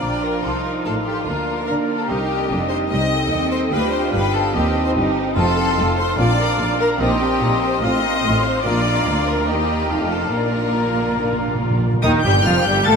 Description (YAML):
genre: quick classical-period movement for symphony orchestra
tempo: 145 BPM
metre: 4/4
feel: straight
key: Bb major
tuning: A4 = 442 Hz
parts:
  - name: rich studio violin section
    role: melody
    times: 0.0-13.0 s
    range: D5 to A6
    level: -30 LUFS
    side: left 1 dB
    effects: none
  - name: clear oboe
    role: second line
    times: 0.0-13.0 s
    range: Eb5 to G5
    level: -27 LUFS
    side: left 3 dB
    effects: none
  - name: clear studio violin section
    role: second line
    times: 0.0-13.0 s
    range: Eb4 to Eb5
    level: -23 LUFS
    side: left 1 dB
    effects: none
  - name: large flute ensemble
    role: second line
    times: 0.0-13.0 s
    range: Eb5 to C6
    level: -26 LUFS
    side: left 2 dB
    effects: none
  - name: mellow clarinet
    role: second line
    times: 0.0-12.0 s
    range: Bb3 to F4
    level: -28 LUFS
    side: left 1 dB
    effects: none
  - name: clear studio viola section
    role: accompaniment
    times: 0.0-13.0 s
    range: Eb3 to Bb4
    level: -26 LUFS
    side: right 3 dB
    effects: none
  - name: dark French horn section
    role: sustained chords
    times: 0.0-13.0 s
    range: Eb3 to F4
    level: -25 LUFS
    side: right 1 dB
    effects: none
  - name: bright studio double bass section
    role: bass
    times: 0.0-13.0 s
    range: F1 to D3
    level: -25 LUFS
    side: equal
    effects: none
  - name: rich symphonic cello section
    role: bass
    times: 0.0-13.0 s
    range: C2 to D4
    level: -26 LUFS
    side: equal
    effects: none
  - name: timpani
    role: percussion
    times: 5.4-5.9, 8.7-13.0 s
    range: F2 to Eb3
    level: -26 LUFS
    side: right 2 dB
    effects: none
  - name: warm trumpet section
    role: stabs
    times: 12.0-13.0 s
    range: Eb4 to A4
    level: -23 LUFS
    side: equal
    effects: none
room: wet huge ambient reverb, RT60 8.6 s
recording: in a vast, echoing space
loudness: -16 LUFS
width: side -5 dB against mid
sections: 0.0-12.0 A section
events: timpani fill 10.3-12.0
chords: 0.4 F7/C; 1.3 Bb/D; 2.1 Cm; 3.7 G7/D; 4.5 Cm/Eb; 5.4 F; 6.2 Bb; 7.0 Cm7/Bb; 7.8 F7/A; 8.7 Bb; 9.5 Eb; 9.9 F7; 10.3 Bb; 12.0 Eb